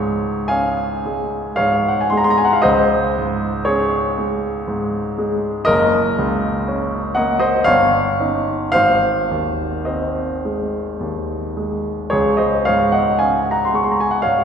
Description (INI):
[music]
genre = classical, romantic nocturne for solo piano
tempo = 48-61 BPM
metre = 3/4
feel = rubato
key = Db major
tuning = A4 = 440 Hz
[part]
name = warm grand piano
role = solo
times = 0.0-14.4 s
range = Gb1 to Db6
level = -16 LUFS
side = equal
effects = none
[sound]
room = wet concert hall reverb, RT60 2.1 s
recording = recorded in a church or concert hall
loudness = -16 LUFS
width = side -7 dB against mid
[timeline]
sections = 0.0-14.4 A section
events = none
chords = 0.0 Db; 2.6 Db5; 5.7 Ebm7/Gb; 7.7 Eb7/G; 8.7 Ab; 12.1 Db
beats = 0.51 1.60 | 2.65 3.68 4.67 | 5.68 6.67 7.67 | 8.74 9.87 10.99 | 12.12 13.20 14.24